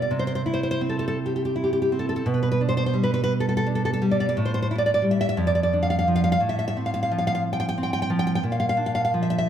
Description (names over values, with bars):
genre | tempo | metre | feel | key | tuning
romantic piece for solo classical guitar | 54-61 BPM (dotted quarters) | 6/8 | rubato | C major, F major from 6.4 s | A4 = 440 Hz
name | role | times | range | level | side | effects
nylon-string guitar | solo | 0.0-9.5 s | F2 to G5 | -21 LUFS | equal | tape echo
room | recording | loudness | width
moderate recital hall reverb, RT60 1.4 s | none | -21 LUFS | side -9 dB against mid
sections
0.0-9.5 A section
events
none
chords
0.1 C; 2.3 G/B; 4.4 A5; 5.4 Dm/F; 6.4 F/A; 8.4 Bb